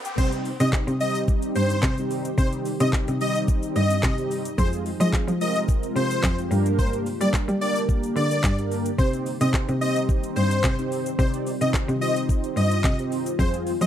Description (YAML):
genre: dance-pop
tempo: 109 BPM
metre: 4/4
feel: straight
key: C minor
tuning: A4 = 441 Hz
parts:
  - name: mellow synth brass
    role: accompaniment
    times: 0.0-13.9 s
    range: G3 to D5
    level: -30 LUFS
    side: right 2 dB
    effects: chorus, sidechain pumping
  - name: clear cello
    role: bass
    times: 0.0-13.9 s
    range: F2 to G3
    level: -25 LUFS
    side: equal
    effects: sidechain pumping
  - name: smooth R&B drum kit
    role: drums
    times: 0.0-13.9 s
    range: crash cymbal, handclaps, hi-hat, kick drum, shaker, snare drum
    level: -25 LUFS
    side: equal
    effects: none
  - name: supersaw chords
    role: melody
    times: 0.2-13.9 s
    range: C5 to Eb5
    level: -28 LUFS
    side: left 1 dB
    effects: sidechain pumping, tape echo
  - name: glassy FM pad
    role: sustained chords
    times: 1.1-13.9 s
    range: C3 to G4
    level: -32 LUFS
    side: left 2 dB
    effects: ensemble chorus, built-in reverb, sidechain pumping
room: little or no reverb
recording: dry, close 1970s-style studio recording, high-pass filter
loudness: -21 LUFS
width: side -10 dB against mid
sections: 0.2-13.9 A section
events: drum fill 0.0; drop 0.2-13.9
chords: 0.2 Cm; 4.6 Fm; 6.5 Gm; 9.0 Cm